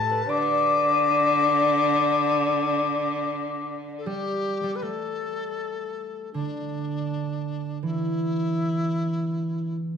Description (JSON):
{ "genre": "chinese traditional, Chinese chamber ensemble", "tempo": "80 BPM", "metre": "4/4", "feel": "rubato", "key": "D zhi mode", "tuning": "A4 = 440 Hz", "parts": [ { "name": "reedy large dizi", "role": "melody", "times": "0.0-9.8 s", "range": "D4 to D6", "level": "-26 LUFS", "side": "left 6 dB", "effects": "none" }, { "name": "clear cello", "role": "second line", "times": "0.0-4.0 s", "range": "A2 to D3", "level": "-27 LUFS", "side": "right 5 dB", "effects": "none" }, { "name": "concert harp", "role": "second line", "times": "0.0-10.0 s", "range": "D3 to D5", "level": "-29 LUFS", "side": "right 3 dB", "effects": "none" }, { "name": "reedy low xiao", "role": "second line", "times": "0.0-4.1 s", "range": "A4 to D5", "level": "-28 LUFS", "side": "left 7 dB", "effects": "none" } ], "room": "moderate scoring stage reverb, RT60 2.0 s", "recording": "none", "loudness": "-22 LUFS", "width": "side -7 dB against mid", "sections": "0.0-4.8 A section; 4.8-10.0 B section", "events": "none", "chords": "none" }